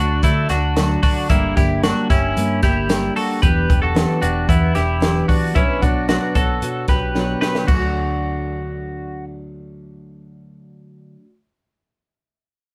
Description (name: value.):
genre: jangly indie pop.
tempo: 113 BPM.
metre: 4/4.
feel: straight.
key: D major.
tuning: A4 = 439 Hz.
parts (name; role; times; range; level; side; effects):
picked steel-string acoustic guitar; accompaniment; 0.0-11.3 s; B2 to D5; -26 LUFS; equal; none.
twelve-string electric guitar; arpeggios; 0.0-9.2 s; A3 to B4; -24 LUFS; equal; none.
vintage muted picked electric bass; bass; 0.0-10.8 s; E1 to D3; -25 LUFS; equal; none.
compact cocktail drum kit; drums; 0.2-7.8 s; crash cymbal, hi-hat, kick drum, snare drum; -22 LUFS; equal; none.
tambourine; percussion; 0.2-3.0 s; none; -43 LUFS; equal; none.
room: light reverb.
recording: band playing live in one room.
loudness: -18 LUFS.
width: mono.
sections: 0.0-7.7 A section; 7.7-12.0 B section.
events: drum fill 7.2-7.7.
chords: 0.0 D; 1.3 Gm; 3.4 Em7; 5.6 Bmadd9; 7.7 D.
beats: 0.24 0.77 | 1.30 1.83 2.36 2.89 | 3.43 3.96 4.49 5.02 | 5.55 6.09 6.62 7.15 | 7.69 8.22 8.75 9.29 | 9.82 10.36 10.89.